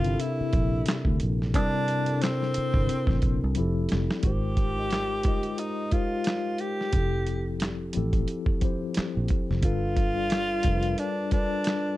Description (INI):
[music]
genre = R&B, neo-soul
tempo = 89 BPM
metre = 4/4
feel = swing 55% on 16ths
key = F major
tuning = A4 = 440 Hz
[part]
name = breathy tenor saxophone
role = melody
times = 0.0-12.0 s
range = C4 to G4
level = -29 LUFS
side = equal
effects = slapback echo
[part]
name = mellow tine electric piano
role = accompaniment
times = 0.0-12.0 s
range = C3 to Eb5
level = -30 LUFS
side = left 3 dB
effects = medium stereo tremolo
[part]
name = fingered electric bass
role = bass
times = 0.0-10.9 s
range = F1 to D2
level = -28 LUFS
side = right 1 dB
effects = none
[part]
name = dusty soul sampler-style drum kit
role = drums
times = 0.0-11.8 s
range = handclaps, hi-hat, kick drum, snare drum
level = -27 LUFS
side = right 1 dB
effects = none
[sound]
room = little or no reverb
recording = dark, warm production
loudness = -24 LUFS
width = side -16 dB against mid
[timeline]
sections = 0.0-4.2 A section; 4.2-12.0 B section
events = drum fill 3.6-4.2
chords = 0.0 C7; 3.6 Fmaj9; 4.2 Abmaj13; 6.9 Fmaj9; 9.6 G7